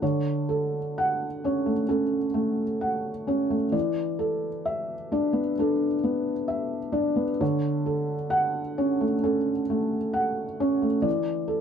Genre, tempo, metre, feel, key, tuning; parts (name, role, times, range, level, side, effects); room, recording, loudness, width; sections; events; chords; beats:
neoclassical minimalist piano; 65 BPM; 4/4; rubato; A4 = 441 Hz
felt-muted upright piano; solo; 0.0-11.6 s; D3 to F#5; -24 LUFS; equal
moderate small room reverb, RT60 0.6 s; dark, warm production; -24 LUFS; side -7 dB against mid
0.0-11.6 A section
0.0 Dmaj7; 3.7 E7sus4; 7.4 Dmaj7; 11.1 E7sus4
| 0.01 0.96 1.90 2.81 | 3.74 4.66 5.59 6.50 | 7.41 8.33 9.24 10.16 | 11.06